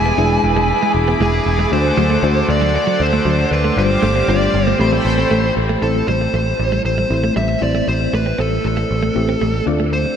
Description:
pop; 117 BPM; 4/4; straight; A minor; A4 = 439 Hz
fuzz lead guitar; melody; 0.0-10.2 s; G#4 to G#5; -20 LUFS; right 1 dB; distortion, tape echo
FM electric piano with auto-pan; accompaniment; 0.0-10.2 s; G3 to B5; -22 LUFS; left 2 dB
distorted electric guitar; accompaniment; 0.0-5.8 s; G2 to E4; -28 LUFS; left 3 dB; overdrive, lush chorus
brassy analog pad; sustained chords; 0.0-5.8 s; G4 to D6; -24 LUFS; left 1 dB; chorus, tremolo
direct-recorded clean electric guitar; riff; 0.0-10.1 s; F#3 to C4; -23 LUFS; right 4 dB; wide subtle chorus
picked electric bass; bass; 0.0-10.0 s; E1 to D2; -19 LUFS; equal
wet huge ambient reverb, RT60 7.8 s; dreamy mix soaked in reverb; -14 LUFS; side -8 dB against mid
0.0-5.8 A section; 5.8-10.2 B section
0.0 E7; 1.7 D7; 3.8 G7sus4; 4.8 Am9; 5.8 Am
0.18 0.69 1.21 | 1.72 2.23 2.75 3.26 | 3.77 4.28 4.80 5.31 | 5.82 6.33 6.85 7.36 | 7.87 8.39 8.90 9.41 | 9.93

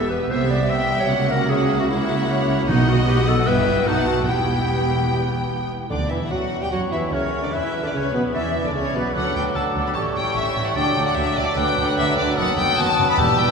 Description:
classical; 149 BPM; 4/4; straight; E minor; A4 = 440 Hz
rich chamber violin section; melody; 0.0-13.5 s; B4 to B5; -25 LUFS; left 4 dB
clear clarinet; second line; 0.0-13.5 s; B3 to E5; -26 LUFS; equal
warm symphonic viola section; accompaniment; 0.0-13.5 s; D3 to G4; -27 LUFS; right 1 dB
dark symphonic cello section; bass; 0.0-13.5 s; D2 to G3; -28 LUFS; right 2 dB
warm symphonic double bass section; bass; 0.0-13.5 s; E1 to F#2; -25 LUFS; right 2 dB
warm symphonic violin section; second line; 0.3-13.5 s; B3 to G5; -29 LUFS; left 2 dB
timpani; percussion; 2.7-3.2, 5.9-6.5, 13.2-13.5 s; E2 to B2; -29 LUFS; equal
mellow silver concert flute; second line; 5.9-13.5 s; B4 to E6; -28 LUFS; left 2 dB
mellow bassoon; accompaniment; 5.9-13.5 s; B2 to G3; -29 LUFS; right 1 dB
warm cor anglais; second line; 6.7-13.5 s; F#4 to D5; -28 LUFS; right 2 dB
wet church reverb, RT60 3.7 s; minimal, uncompressed stereo recording; -18 LUFS; side -5 dB against mid
0.0-5.9 A section; 5.9-13.5 B section
0.3 Cmaj7; 1.1 F#7/C#; 2.7 B; 3.5 Em/G; 3.9 B7; 4.3 Em; 5.9 Em9/D; 6.7 F#7; 7.5 Bm; 9.1 D; 10.0 A7; 10.8 D; 12.4 B7/F#
0.31 0.70 | 1.10 1.50 1.90 2.29 | 2.69 3.08 3.47 3.87 | 4.28 4.68 5.09 5.50 | 5.91 6.32 6.72 7.13 | 7.53 7.93 8.34 8.74 | 9.15 9.55 9.95 10.35 | 10.76 11.16 11.56 11.97 | 12.37 12.78 13.18

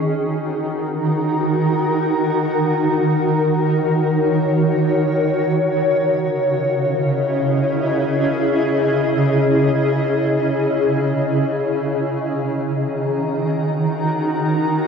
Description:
ambient; free time; A4 = 441 Hz
granular cloud pad; solo; 0.0-14.9 s; C#3 to A#5; -16 LUFS; equal; built-in reverb, ping-pong delay
wet huge ambient reverb, RT60 7.8 s; worn, warbling old tape, cassette tape, warbly pitch drift; -16 LUFS; side -6 dB against mid
0.0-14.9 A section
0.0 D#m; 1.8 D#m7; 5.2 C#madd9; 12.0 D#m
free time

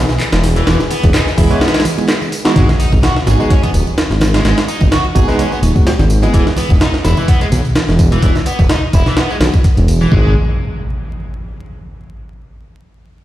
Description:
breakbeat, breaks; 127 BPM; 4/4; swing 55% on 16ths; A4 = 441 Hz
dark studio string section; sustained chords; 0.0-2.5 s; E3 to B4; -24 LUFS; left 1 dB; vintage 12-bit sampler grit, sidechain pumping
dark detuned saw bass; bass; 0.0-10.3 s; D#1 to B1; -13 LUFS; equal
breakbeat sampler-style drum kit; drums; 0.1-10.2 s; hi-hat, kick drum, snare drum; -14 LUFS; equal
house drum kit; drums; 0.1-10.1 s; handclaps, hi-hat, tambourine; -28 LUFS; right 1 dB; overdrive
congas; percussion; 0.2-10.1 s; -22 LUFS; right 1 dB
biting overdriven guitar; riff; 0.6-10.3 s; E3 to G#4; -21 LUFS; equal; tube saturation, vintage 12-bit sampler grit, low-pass filter, tape echo
tine electric piano; stabs; 1.4-6.5 s; G#3 to C#5; -20 LUFS; right 2 dB; medium stereo tremolo, vintage 12-bit sampler grit, tape echo
impact; sound effects; 2.7-4.4, 10.1-12.0 s; -20 LUFS; equal
light reverb; played on a big sound system in a bare room, stone room reverb, vinyl crackle; -10 LUFS; side -14 dB against mid
0.0-2.6 A section; 2.6-10.1 B section; 10.1-12.0 C section
drop 0.0-2.6; impact 2.6-4.4
0.0 E; 2.6 G#m7; 6.3 E5; 10.1 N.C.
0.20 | 0.67 1.14 1.61 2.09 | 2.56 3.03 3.50 3.98 | 4.45 4.92 5.39 5.87 | 6.34 6.81 7.28 7.75 | 8.23 8.70 9.17 9.64 | 10.12 10.59 11.06 11.54

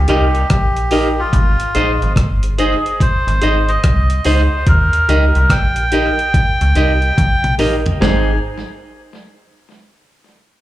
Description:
roots reggae; 72 BPM; 4/4; swing 64% on 16ths; Ab major; A4 = 441 Hz
melodica; melody; 0.0-8.4 s; F4 to Ab5; -18 LUFS; equal; tape echo, plate reverb, slapback echo
metallic FM bass; bass; 0.0-8.4 s; G1 to Eb2; -15 LUFS; equal
clear horn section; second line; 0.1-0.4, 8.0-8.3 s; Bb2 to Eb4; -28 LUFS; right 1 dB; tube saturation, tape echo, plate reverb, slapback echo
clean electric guitar; accompaniment; 0.1-8.3 s; Eb4 to Eb5; -21 LUFS; right 3 dB; spring reverb, tape echo, plate reverb, slapback echo
dark grand piano; stabs; 0.1-8.3 s; Eb4 to C5; -21 LUFS; left 3 dB; plate reverb, slapback echo
dusty soul sampler-style drum kit; drums; 0.1-8.3 s; hi-hat, kick drum, rim click, snare drum, toms; -17 LUFS; equal
light reverb; live gig heard through the venue's PA, club reverb; -12 LUFS; side -15 dB against mid
0.0-8.0 A section; 8.0-10.6 B section
drum fill 7.2-8.0
0.0 Eb; 1.3 Ab; 4.7 Eb; 8.0 Ab
0.50 | 1.33 2.17 3.00 3.83 | 4.67 5.50 6.33 7.17 | 8.00

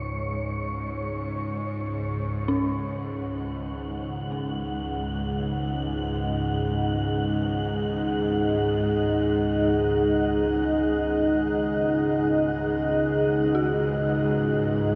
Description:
dark ambient drone; free time; A4 = 440 Hz
bowed-like drone; drone; 0.0-15.0 s; C#2 to G#2; -30 LUFS; equal; built-in reverb
wind-like tuned noise texture; texture; 0.0-15.0 s; C#5 to F#5; -37 LUFS; equal; built-in reverb, shimmer reverb
dark analog pad; sustained chords; 3.5-15.0 s; D#4 to D#5; -27 LUFS; equal; chorus, shimmer reverb
dark detuned synth bell; arpeggios; 2.5-15.0 s; C#4 to F#4; -35 LUFS; equal; chorus, tremolo, delay, shimmer reverb
wet huge ambient reverb, RT60 8.3 s; dark, warm production; -26 LUFS; mono
0.0-15.0 A section
fade-in on synth drone 0.0-15.0
0.0 C#sus2
free time

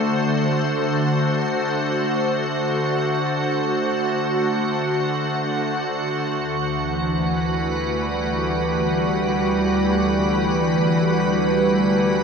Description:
ambient; free time; D mixolydian; A4 = 440 Hz
soft additive organ-like pad; solo; 0.0-12.2 s; D2 to C5; -19 LUFS; equal; ensemble chorus, built-in reverb, ping-pong delay
wet huge ambient reverb, RT60 8.4 s; -19 LUFS; side -6 dB against mid
0.0-12.2 A section
0.0 D7; 6.3 Emadd9/D
free time

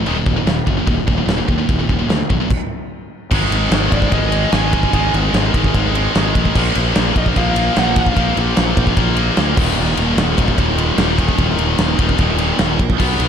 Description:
heavy metal; 148 BPM; 4/4; straight; A4 = 440 Hz
heavy high-gain guitar; riff; 0.0-13.3 s; Eb2 to B3; -21 LUFS; left 16 dB; distortion
heavy high-gain guitar; riff; 0.0-13.3 s; Eb2 to B3; -22 LUFS; right 16 dB; distortion
fuzz fingered electric bass; bass; 0.1-13.3 s; Eb1 to Eb2; -19 LUFS; equal; overdrive
big rock drum kit; drums; 0.1-13.3 s; crash cymbal, kick drum, ride cymbal, snare drum; -18 LUFS; equal
high-gain lead guitar; melody; 3.9-8.3 s; D5 to Ab5; -24 LUFS; right 2 dB; distortion, tape echo
light reverb; dark, warm production; -13 LUFS; side -8 dB against mid
0.0-3.3 A section; 3.3-13.3 B section
stop 2.5-3.3
0.1 Eb5; 2.9 N.C.; 3.3 Ab5; 6.5 Bb5; 9.6 Eb5
| 0.07 0.47 0.88 1.28 | 1.69 2.10 2.50 2.91 | 3.31 3.72 4.12 4.53 | 4.93 5.34 5.74 6.15 | 6.55 6.95 7.36 7.76 | 8.17 8.57 8.97 9.38 | 9.78 10.18 10.59 10.99 | 11.39 11.79 12.20 12.60 | 13.00

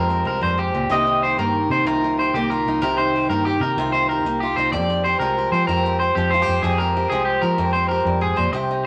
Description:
highlife guitar band; 126 BPM (dotted quarters); 12/8; straight; C minor; A4 = 440 Hz
picked steel-string acoustic guitar; melody; 0.0-0.6 s; F4 to C5; -38 LUFS; equal
picked old ladder-braced acoustic guitar; accompaniment; 0.0-8.9 s; F2 to G4; -25 LUFS; equal
electric guitar at the edge of break-up; arpeggios; 0.0-8.6 s; G4 to Eb5; -23 LUFS; equal; spring reverb
fingered electric bass; bass; 0.0-8.9 s; C2 to F3; -28 LUFS; equal
moderate studio reverb, RT60 0.6 s; vinyl crackle; -20 LUFS; mono
0.9-8.9 A section
0.0 Fmadd9; 0.9 Cm7; 4.7 Fmadd9
0.43 | 0.91 1.38 1.86 2.34 | 2.81 3.29 3.77 4.24 | 4.72 5.20 5.67 6.15 | 6.63 7.10 7.58 8.06 | 8.53

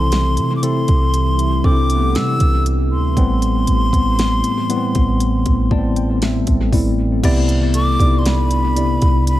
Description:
contemporary R&B; 59 BPM; 4/4; straight; C major; A4 = 440 Hz
breathy silver concert flute; melody; 0.0-9.4 s; B5 to E6; -22 LUFS; left 1 dB; analog delay
tine electric piano; accompaniment; 0.0-9.4 s; A2 to A5; -19 LUFS; left 2 dB; medium stereo tremolo, analog delay
deep dark ambient pad; sustained chords; 0.1-9.4 s; C3 to E4; -27 LUFS; right 2 dB; chorus, built-in reverb, sidechain pumping
clean 808-style bass; bass; 0.0-9.4 s; A1 to C3; -18 LUFS; equal
smooth R&B drum kit; drums; 0.1-9.4 s; crash cymbal, hi-hat, kick drum, snare drum; -19 LUFS; equal
Celtic harp; texture; 1.6-9.4 s; B3 to D5; -32 LUFS; equal; analog delay
digital ambience; echo-heavy mix; -14 LUFS; side -14 dB against mid
0.0-7.2 A section; 7.2-9.4 B section
tine electric piano fill 5.2-7.2
0.0 C6; 3.2 Am9; 7.2 Cmaj9
0.12 1.13 2.15 | 3.17 4.18 5.20 6.22 | 7.24 8.25 9.27

